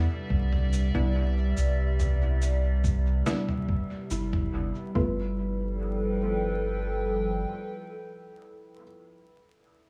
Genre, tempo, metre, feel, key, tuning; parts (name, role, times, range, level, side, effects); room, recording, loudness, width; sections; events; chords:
ambient dub; 71 BPM; 4/4; straight; G mixolydian; A4 = 435 Hz
warbly tape-like pad; sustained chords; 0.0-9.1 s; C3 to G5; -34 LUFS; equal; chorus, built-in reverb, phaser
felt-muted upright piano; arpeggios; 0.0-9.9 s; B3 to E5; -44 LUFS; equal; dub echo
filtered dub chord stab; stabs; 0.0-8.8 s; A3 to F4; -38 LUFS; equal; chorus, dub echo
soft dub sub bass; bass; 0.0-7.4 s; G1 to C2; -29 LUFS; equal
electronic kick drum; drums; 0.3-5.1 s; -31 LUFS; equal; studio reverb
lo-fi sampler-style drum kit; drums; 0.5-4.5 s; shaker, snare drum, toms; -37 LUFS; equal; studio reverb, dub echo
light reverb, digital ambience; vinyl crackle, studio ambience; -28 LUFS; mono
0.0-5.0 A section; 5.0-8.3 B section
0.0 Cmaj9; 5.0 G7